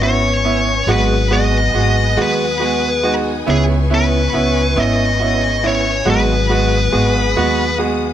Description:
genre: pop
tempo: 46 BPM (dotted quarters)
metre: 6/8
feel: straight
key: C# minor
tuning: A4 = 438 Hz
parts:
  - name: high-gain lead guitar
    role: melody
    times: 0.0-7.8 s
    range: G#4 to D#5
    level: -18 LUFS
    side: left 2 dB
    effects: distortion
  - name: clear upright piano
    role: accompaniment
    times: 0.0-8.0 s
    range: G#3 to F#4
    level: -19 LUFS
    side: right 5 dB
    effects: none
  - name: warm studio string section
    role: sustained chords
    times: 0.0-8.1 s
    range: E4 to D#6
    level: -26 LUFS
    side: left 3 dB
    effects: none
  - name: direct-recorded clean electric guitar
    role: arpeggios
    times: 0.0-8.1 s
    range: E3 to G#4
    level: -25 LUFS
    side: left 9 dB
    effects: vibrato effect
  - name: upright bass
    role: bass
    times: 0.0-8.1 s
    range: G#1 to D#2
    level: -18 LUFS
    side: left 1 dB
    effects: none
room: light reverb, studio reverb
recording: none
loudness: -13 LUFS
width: side -10 dB against mid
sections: 0.0-8.1 A section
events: none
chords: 0.0 C#m7; 0.9 G#m7; 3.5 C#m7; 6.1 G#m7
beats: | 0.88 2.18 | 3.47 4.77 | 6.06 7.36

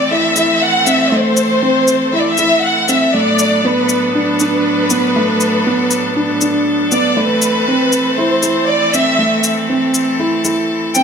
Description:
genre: piano and strings electronica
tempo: 119 BPM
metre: 4/4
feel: straight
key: A dorian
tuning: A4 = 441 Hz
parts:
  - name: warm symphonic violin section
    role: melody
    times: 0.0-11.0 s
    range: B4 to G5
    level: -15 LUFS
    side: left 1 dB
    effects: none
  - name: bright string quartet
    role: sustained chords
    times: 0.0-11.0 s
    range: A2 to A4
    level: -20 LUFS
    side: equal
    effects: none
  - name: felt-muted upright piano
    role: riff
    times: 0.0-11.0 s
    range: A3 to E4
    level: -16 LUFS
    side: right 1 dB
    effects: low-pass filter, digital delay
  - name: shaker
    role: drums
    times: 0.4-11.0 s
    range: none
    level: -19 LUFS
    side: left 4 dB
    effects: none
room: moderate echo chamber reverb, RT60 2.4 s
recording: none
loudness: -11 LUFS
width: side -6 dB against mid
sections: 0.0-11.0 A section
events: filter sweep on felt piano 0.0-11.0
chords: 0.0 Am; 3.1 Bm7/A; 7.2 Am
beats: 0.11 0.61 | 1.12 1.62 2.13 2.63 | 3.14 3.64 4.14 4.65 | 5.15 5.66 6.16 6.67 | 7.17 7.67 8.18 8.68 | 9.19 9.69 10.20 10.70

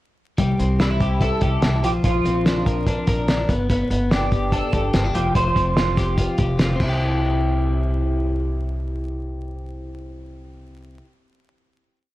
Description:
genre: jangly indie pop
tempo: 145 BPM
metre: 4/4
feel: straight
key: C major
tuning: A4 = 439 Hz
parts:
  - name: twelve-string electric guitar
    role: arpeggios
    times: 0.4-11.1 s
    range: F3 to Bb4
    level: -24 LUFS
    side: left 1 dB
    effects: wide subtle chorus
  - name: upright bass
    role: bass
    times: 0.4-11.0 s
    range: F1 to C2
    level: -24 LUFS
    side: equal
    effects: transformer saturation
  - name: cloth-damped thuddy drum kit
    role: drums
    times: 0.4-6.9 s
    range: crash cymbal, hi-hat, kick drum, snare drum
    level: -22 LUFS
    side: equal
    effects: none
  - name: electric guitar through a small old amp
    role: melody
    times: 0.8-6.1 s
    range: E4 to C5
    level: -25 LUFS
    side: right 1 dB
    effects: analog chorus
room: light reverb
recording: dry, gritty hardware recording, vinyl crackle, lossy compression artefacts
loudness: -18 LUFS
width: side -16 dB against mid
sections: 0.4-7.0 verse; 7.0-10.3 final hit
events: none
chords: 0.4 C; 1.8 Bbadd9; 3.5 G; 5.1 Fsus2; 6.8 C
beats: | 0.38 0.80 1.21 1.62 | 2.04 2.45 2.87 3.28 | 3.70 4.11 4.52 4.94 | 5.35 5.76 6.18 6.59 | 7.01 7.42 7.83 8.25 | 8.66 9.08 9.49 9.91

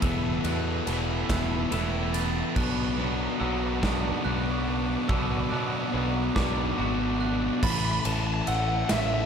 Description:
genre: post-rock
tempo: 47 BPM (dotted quarters)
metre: 6/8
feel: straight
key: unclear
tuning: A4 = 440 Hz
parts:
  - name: warm symphonic string section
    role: sustained chords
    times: 0.0-9.3 s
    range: A4 to E6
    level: -40 LUFS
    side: right 3 dB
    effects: none
  - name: glockenspiel with soft plastic mallets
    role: arpeggios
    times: 0.0-9.3 s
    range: D6 to A6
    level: -40 LUFS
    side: right 5 dB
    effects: tape echo
  - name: twangy electric guitar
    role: arpeggios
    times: 0.0-7.6 s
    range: E2 to F#4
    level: -35 LUFS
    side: left 2 dB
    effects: lush chorus, tape echo
  - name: sludgy distorted guitar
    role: riff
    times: 0.0-9.3 s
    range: A2 to E4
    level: -30 LUFS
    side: left 8 dB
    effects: overdrive
  - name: thick fuzz guitar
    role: riff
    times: 0.0-7.6 s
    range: B2 to B4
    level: -32 LUFS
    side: right 14 dB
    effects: distortion
  - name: picked electric bass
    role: bass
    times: 0.0-9.3 s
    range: E1 to B2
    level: -31 LUFS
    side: right 1 dB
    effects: none
  - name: big rock drum kit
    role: drums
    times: 0.0-9.1 s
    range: crash cymbal, kick drum, ride cymbal, snare drum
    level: -32 LUFS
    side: right 1 dB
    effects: none
  - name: overdriven semi-hollow guitar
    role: melody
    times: 7.6-9.3 s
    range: E5 to B5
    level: -29 LUFS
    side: right 1 dB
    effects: spring reverb
room: light reverb, small room ambience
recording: dark, warm production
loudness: -24 LUFS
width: side -7 dB against mid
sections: 0.0-7.6 A section; 7.6-9.3 B section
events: build-up 0.0-7.6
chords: 0.0 Esus4; 2.6 Bm; 7.6 A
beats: | 0.03 1.30 | 2.56 3.83 | 5.10 6.37 | 7.63 8.90

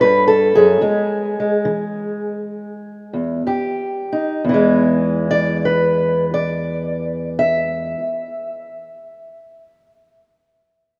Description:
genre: acoustic country blues, solo or duo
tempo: 58-76 BPM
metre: 4/4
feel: swing 67% on 8ths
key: E mixolydian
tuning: A4 = 440 Hz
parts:
  - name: fingerpicked steel-string acoustic guitar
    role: solo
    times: 0.0-10.1 s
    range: E2 to E5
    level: -18 LUFS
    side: equal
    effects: none
room: wet lush hall reverb, RT60 2.9 s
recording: rough home demo mix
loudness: -18 LUFS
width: mono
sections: 0.0-4.5 A section; 4.5-8.6 B section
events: slowing down 0.0-4.5; stop 0.8-3.5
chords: 0.0 A7; 0.8 E; 3.5 Fsus2; 4.5 E7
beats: 0.02 | 0.82 1.65 2.53 3.46 | 4.46 5.49 6.53 7.57

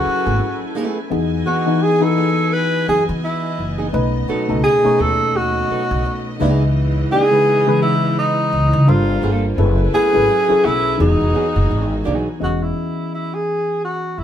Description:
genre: R&B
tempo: 85 BPM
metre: 4/4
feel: swing 58% on 16ths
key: E major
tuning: A4 = 439 Hz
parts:
  - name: breathy tenor saxophone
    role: melody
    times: 0.0-14.2 s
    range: D#4 to B4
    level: -18 LUFS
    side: equal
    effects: none
  - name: mellow reed electric piano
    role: accompaniment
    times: 0.0-14.2 s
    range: B2 to D#5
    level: -20 LUFS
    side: left 2 dB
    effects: phaser
  - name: warm studio string section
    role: sustained chords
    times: 0.0-12.4 s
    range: C#3 to G#5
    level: -29 LUFS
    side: right 2 dB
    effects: none
  - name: upright bass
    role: bass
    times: 0.1-14.2 s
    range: E1 to E3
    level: -19 LUFS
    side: equal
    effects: none
  - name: nylon-string guitar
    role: second line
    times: 0.2-12.3 s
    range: E3 to A4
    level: -24 LUFS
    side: right 4 dB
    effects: none
room: moderate studio reverb, RT60 0.9 s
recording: band playing live in one room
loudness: -15 LUFS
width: side -10 dB against mid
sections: 0.0-12.4 A section; 12.4-14.2 B section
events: none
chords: 0.0 F#m11; 1.1 Emaj7; 3.9 B7; 6.4 C#m9; 8.9 Gm11; 9.6 F#m11; 11.0 Emaj9; 12.4 Emaj13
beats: 0.39 | 1.10 1.81 2.51 3.22 | 3.92 4.63 5.33 6.04 | 6.75 7.45 8.16 8.86 | 9.57 10.28 10.98 11.69 | 12.39 13.10 13.81

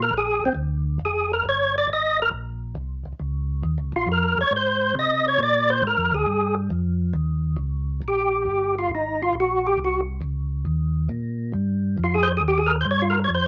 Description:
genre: soul jazz organ trio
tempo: 137 BPM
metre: 4/4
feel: swing 68% on 8ths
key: Eb mixolydian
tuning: A4 = 441 Hz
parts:
  - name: percussive tonewheel organ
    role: melody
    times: 0.0-13.5 s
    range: C4 to Eb5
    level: -23 LUFS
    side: equal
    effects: slow rotary speaker, chorus vibrato
  - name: mellow tonewheel organ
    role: bass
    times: 0.0-13.5 s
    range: F1 to C3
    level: -28 LUFS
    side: equal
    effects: slow rotary speaker
room: moderate studio reverb, RT60 0.6 s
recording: nothing above 7.5 kHz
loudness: -23 LUFS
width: mono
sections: 0.0-7.2 A section; 7.2-13.5 A section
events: tonewheel organ solo 0.0-7.2, 7.2-13.5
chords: 0.1 Bb; 1.9 Abadd9; 3.6 Ebsus2; 4.5 Ab; 5.4 Bb7; 7.2 Eb7; 8.9 Abadd9; 10.7 Ebadd9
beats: | 0.12 0.56 1.00 1.44 | 1.88 2.32 2.76 3.20 | 3.64 4.08 4.52 4.96 | 5.40 5.84 6.28 6.71 | 7.15 7.59 8.03 8.47 | 8.91 9.35 9.79 10.23 | 10.66 11.10 11.54 11.98 | 12.42 12.86 13.30

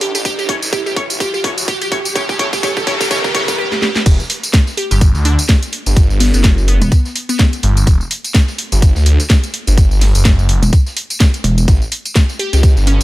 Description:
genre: bass house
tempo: 126 BPM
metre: 4/4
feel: swing 57% on 16ths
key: unclear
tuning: A4 = 440 Hz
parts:
  - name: glassy wavetable pluck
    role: melody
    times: 0.0-7.6, 12.4-13.0 s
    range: B3 to G4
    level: -20 LUFS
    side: right 1 dB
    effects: chorus
  - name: phased detuned saw bass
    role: bass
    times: 0.0-13.0 s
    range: E1 to D2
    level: -14 LUFS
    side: equal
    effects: phaser, overdrive, sidechain pumping, high-pass filter
  - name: garage drum kit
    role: drums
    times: 0.0-13.0 s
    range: crash cymbal, hi-hat, snare drum, tambourine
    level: -19 LUFS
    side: equal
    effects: none
  - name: riser and noise sweep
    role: sound effects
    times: 0.0-4.1 s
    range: none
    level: -23 LUFS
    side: right 1 dB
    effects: none
  - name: electronic kick drum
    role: drums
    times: 0.2-12.7 s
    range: none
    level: -11 LUFS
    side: equal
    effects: high-pass filter on kick, high-pass filter on room
  - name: clear horn section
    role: stabs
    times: 0.5-3.4 s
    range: C#4 to C#5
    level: -24 LUFS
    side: left 2 dB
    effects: sidechain pumping, dub echo
  - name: breakbeat sampler-style drum kit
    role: drums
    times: 4.1-13.0 s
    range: hi-hat, snare drum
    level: -30 LUFS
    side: equal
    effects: none
  - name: pulsing pluck wobble bass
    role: bass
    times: 6.8-6.9, 10.6-11.7 s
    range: E1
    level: -12 LUFS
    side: equal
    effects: chorus, tube saturation, sidechain pumping
room: little or no reverb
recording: none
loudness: -11 LUFS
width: side -17 dB against mid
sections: 0.0-4.1 A section; 4.1-13.0 B section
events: build-up 0.0-4.1; drum fill 0.0-3.6, 3.7-4.1; riser 0.0-3.6; noise sweep 2.2-4.1; drop 4.1-13.0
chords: 0.0 A; 4.1 N.C.; 11.7 A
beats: | 0.25 0.73 1.20 1.68 | 2.15 2.63 3.11 3.58 | 4.06 4.54 5.01 5.49 | 5.96 6.44 6.92 7.39 | 7.87 8.35 8.82 9.30 | 9.77 10.25 10.73 11.20 | 11.68 12.15 12.63

